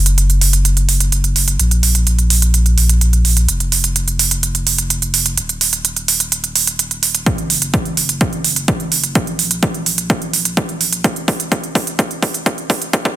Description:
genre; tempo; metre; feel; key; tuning
EDM, festival progressive house; 127 BPM; 4/4; straight; unclear; A4 = 440 Hz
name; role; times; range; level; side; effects
saturated sub bass; bass; 0.0-13.2 s; Eb1 to Bb1; -17 LUFS; equal; sidechain pumping
electronic hi-hat; drums; 0.1-13.1 s; none; -15 LUFS; right 5 dB; overdrive
electronic kick drum; drums; 7.3-13.1 s; none; -17 LUFS; equal; overdrive
room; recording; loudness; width
little or no reverb; dense, heavily limited modern master, high-pass filter; -13 LUFS; side -13 dB against mid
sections
0.0-13.2 A section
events
build-up 0.0-13.2; filter sweep 0.0-13.2; drum fill 7.3-13.2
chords
none

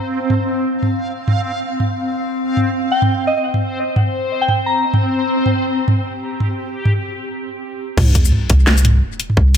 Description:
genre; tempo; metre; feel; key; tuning
half-time drum and bass; 172 BPM; 4/4; swing 58% on 16ths, half-time; unclear; A4 = 440 Hz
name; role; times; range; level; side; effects
backwards swelling texture; texture; 0.0-7.3 s; C4 to F5; -20 LUFS; equal; built-in reverb
drum and bass drum kit; drums; 0.3-9.6 s; crash cymbal, hi-hat, shaker, snare drum, toms; -18 LUFS; equal; overdrive, low-pass filter on snare, low-pass filter on hats, low-pass filter on toms, low-pass filter on perc, low-pass filter on cymbals
soft synth bell; melody; 2.9-5.0 s; Eb5 to Bb5; -21 LUFS; left 1 dB; chorus, vintage 12-bit sampler grit, tape echo
long sustained 808-style bass; bass; 8.0-9.6 s; C2; -12 LUFS; equal; none
electronic kick drum; drums; 8.0-9.5 s; none; -15 LUFS; equal; overdrive
sub drop; sound effects; 8.0-9.4 s; none; -22 LUFS; equal; none
room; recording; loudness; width
light reverb; echo-heavy mix; -15 LUFS; side -8 dB against mid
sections
0.0-8.0 A section; 8.0-9.6 B section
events
filter sweep on drum 0.0-8.0; break 7.3-8.0; drop 8.0-9.6; impact 8.0-9.4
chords
0.0 C5

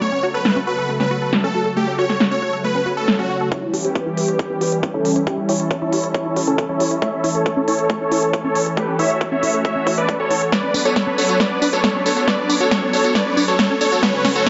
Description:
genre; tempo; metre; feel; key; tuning
uplifting trance; 137 BPM; 4/4; straight; B minor; A4 = 440 Hz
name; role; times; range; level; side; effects
supersaw chords; melody; 0.0-14.5 s; C#4 to E5; -22 LUFS; equal; sidechain pumping, low-pass filter, tape echo
lush unison pad; sustained chords; 0.0-14.5 s; C#3 to C#5; -26 LUFS; equal; chorus, phaser, sidechain pumping
tight sequenced synth; arpeggios; 0.0-14.5 s; A3 to C#5; -27 LUFS; equal; chorus, phaser, sidechain pumping, digital delay
big-room dance drum kit; drums; 0.5-14.5 s; hi-hat, snare drum, tambourine; -24 LUFS; equal; overdrive, low-pass filter on snare, studio ambience, low-pass filter on hats, low-pass filter on perc
swell and riser; sound effects; 2.9-3.5, 13.7-14.5 s; none; -36 LUFS; equal; none
electronic kick drum; drums; 3.5-14.5 s; none; -27 LUFS; equal; overdrive, high-pass filter on kick, studio ambience
room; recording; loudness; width
moderate lush hall reverb, RT60 1.9 s, digital ambience; nothing above 7.7 kHz; -19 LUFS; mono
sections
0.0-3.5 A section; 3.5-14.5 B section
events
swell 2.9-3.5; build-up 3.5-14.5; filter sweep on supersaw synth 3.5-14.5; filter sweep on synth arpeggio sound 3.5-14.5; drum fill 10.5-14.5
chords
0.0 F#m; 3.5 C#dim; 7.0 A; 10.5 Bmadd9

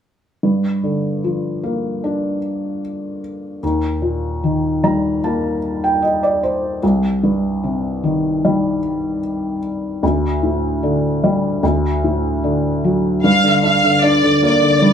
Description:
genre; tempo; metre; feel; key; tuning
pop; 75 BPM; 4/4; straight; G minor; A4 = 440 Hz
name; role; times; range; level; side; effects
felt-muted upright piano; accompaniment; 0.4-14.9 s; C2 to Bb5; -16 LUFS; equal; none
warm studio violin section; melody; 13.3-14.9 s; D5 to F5; -14 LUFS; equal; none
room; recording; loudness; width
wet studio reverb, RT60 0.7 s; band playing live in one room; -15 LUFS; side -8 dB against mid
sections
0.4-13.2 A section; 13.2-14.9 B section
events
felt piano fill 4.4-6.8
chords
0.4 Gm7; 3.6 Eb; 6.8 Cm; 10.0 Dsus4; 11.6 D; 13.2 Gm

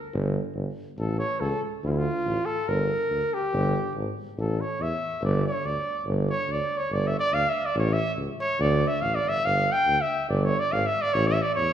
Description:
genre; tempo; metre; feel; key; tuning
balkan folk; 142 BPM; 2/4; straight; G dorian sharp4; A4 = 436 Hz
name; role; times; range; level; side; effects
mellow tuba; bass; 0.1-11.7 s; G1 to E2; -27 LUFS; equal; none
warm trumpet; melody; 1.0-11.7 s; E4 to G5; -26 LUFS; equal; none
room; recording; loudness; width
wet recital hall reverb, RT60 1.5 s; recorded in a church or concert hall; -23 LUFS; side -10 dB against mid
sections
0.0-11.7 A section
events
trumpet solo 0.0-11.7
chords
0.0 G5; 1.0 A; 1.8 Dm; 2.7 Gm; 4.4 A5; 5.2 G5; 7.8 A; 8.6 D5; 9.5 G5; 11.1 A

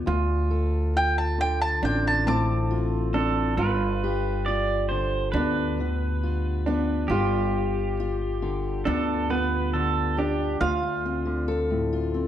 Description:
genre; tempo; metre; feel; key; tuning
acoustic folk duo or small band; 68 BPM; 4/4; straight; unclear; A4 = 444 Hz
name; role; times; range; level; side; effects
mandolin; melody; 0.0-4.0, 10.6-12.3 s; D5 to D6; -26 LUFS; right 1 dB; none
fingerpicked steel-string acoustic guitar; accompaniment; 0.0-12.3 s; D2 to A4; -28 LUFS; left 4 dB; none
upright bass; bass; 0.0-12.3 s; G1 to D2; -27 LUFS; equal; none
felt-muted upright piano; arpeggios; 0.1-11.5 s; B3 to F4; -29 LUFS; right 4 dB; none
pedal steel guitar; second line; 3.1-10.6 s; G4 to D5; -29 LUFS; right 5 dB; none
room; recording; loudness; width
moderate large studio reverb, RT60 1.2 s; none; -23 LUFS; side -11 dB against mid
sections
0.0-7.1 A section; 7.1-10.6 B section; 10.6-12.3 C section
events
mandolin solo 0.0-7.1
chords
0.1 Dm7; 3.6 G7; 10.6 Dm7

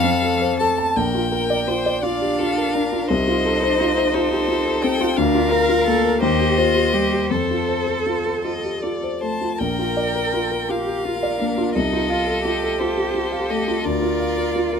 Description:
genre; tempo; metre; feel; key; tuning
classical, slow romantic movement for piano quartet; 52-59 BPM (dotted quarters); 6/8; rubato; Bb major; A4 = 441 Hz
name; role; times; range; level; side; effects
rich violin; melody; 0.0-14.8 s; C5 to A5; -25 LUFS; left 3 dB; none
rich cello; second line; 0.0-14.8 s; F3 to Bb4; -25 LUFS; right 5 dB; none
rich violin; second line; 0.0-14.8 s; A4 to Eb5; -27 LUFS; left 3 dB; none
dark grand piano; accompaniment; 0.0-14.8 s; Bb1 to A5; -21 LUFS; left 1 dB; none
room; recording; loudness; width
light reverb; close, detailed microphones; -18 LUFS; side -6 dB against mid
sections
1.0-14.8 A section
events
none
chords
0.0 F; 1.0 Bb; 3.1 F7/C; 5.2 Bb/D; 6.2 Cm/Eb; 7.3 F; 9.6 Bb; 11.8 F7/C; 13.8 Bb/D

